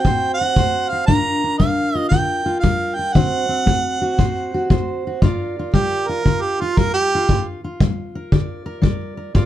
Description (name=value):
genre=acoustic country blues, solo or duo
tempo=116 BPM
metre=4/4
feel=swing 67% on 8ths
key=G minor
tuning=A4 = 440 Hz
part: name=warm harmonica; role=melody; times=0.0-7.4 s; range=F4 to Bb5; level=-20 LUFS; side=right 3 dB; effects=none
part: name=fingerpicked steel-string acoustic guitar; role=accompaniment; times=0.0-9.5 s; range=G2 to D5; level=-21 LUFS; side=left 1 dB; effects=none
part: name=kick drum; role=drums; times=0.0-9.5 s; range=none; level=-17 LUFS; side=left 1 dB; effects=none
room=moderate studio reverb, RT60 0.5 s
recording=dark, warm production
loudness=-16 LUFS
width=side -12 dB against mid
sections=0.0-5.2 A section; 5.2-9.5 B section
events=harmonica solo 5.2-9.5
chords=0.0 D7 (rootless); 1.1 Gm7; 3.1 D7; 5.2 Gm7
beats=0.04 0.56 | 1.08 1.59 2.11 2.63 | 3.15 3.66 4.18 4.70 | 5.22 5.73 6.25 6.77 | 7.28 7.80 8.32 8.83 | 9.35